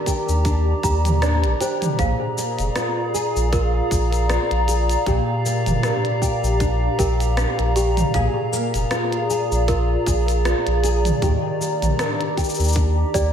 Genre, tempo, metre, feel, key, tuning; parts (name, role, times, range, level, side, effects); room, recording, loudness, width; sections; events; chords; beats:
folktronica; 78 BPM; 4/4; swing 56% on 16ths; Bb mixolydian; A4 = 441 Hz
toy piano; second line; 0.0-13.3 s; G4 to Bb5; -29 LUFS; right 2 dB; ping-pong delay
warbly tape-like pad; sustained chords; 0.0-13.3 s; G4 to Bb5; -24 LUFS; equal; chorus, built-in reverb
nylon-string guitar; arpeggios; 0.0-13.3 s; Bb2 to Ab4; -25 LUFS; equal; ensemble chorus, ping-pong delay
electronic kick drum; drums; 0.1-13.3 s; -24 LUFS; equal
minimal click drum kit; drums; 0.1-13.3 s; cabasa, hi-hat, rim click, toms; -27 LUFS; equal
warm sub bass; bass; 0.3-13.3 s; F1 to Eb2; -20 LUFS; equal
moderate plate reverb, RT60 2.4 s; dreamy mix soaked in reverb; -18 LUFS; side -8 dB against mid
0.0-13.3 A section
0.0 Ebmaj7; 2.0 Bb7; 5.1 Gm7; 8.1 Bb7; 11.2 Ebmaj7
0.45 1.22 | 1.99 2.76 3.53 4.30 | 5.07 5.83 6.60 7.37 | 8.14 8.91 9.68 10.45 | 11.22 11.99 12.76